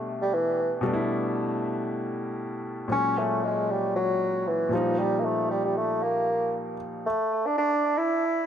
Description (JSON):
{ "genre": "amapiano", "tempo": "116 BPM", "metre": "4/4", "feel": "swing 55% on 16ths", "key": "unclear", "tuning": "A4 = 440 Hz", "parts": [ { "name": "warm concert grand piano", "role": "accompaniment", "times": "0.0-7.1 s", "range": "A#2 to E4", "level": "-29 LUFS", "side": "left 1 dB", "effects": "none" }, { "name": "mellow bassoon", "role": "melody", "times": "0.2-8.5 s", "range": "E3 to E4", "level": "-25 LUFS", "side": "equal", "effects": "dub echo" } ], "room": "moderate spring reverb, RT60 1.3 s, small room ambience", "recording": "echo-heavy mix", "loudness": "-24 LUFS", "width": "side -9 dB against mid", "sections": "0.0-7.0 A section; 7.0-8.5 B section", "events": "drop 7.0-8.5", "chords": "0.0 A9sus4; 2.9 G#9sus4; 4.7 F9sus4; 7.0 N.C." }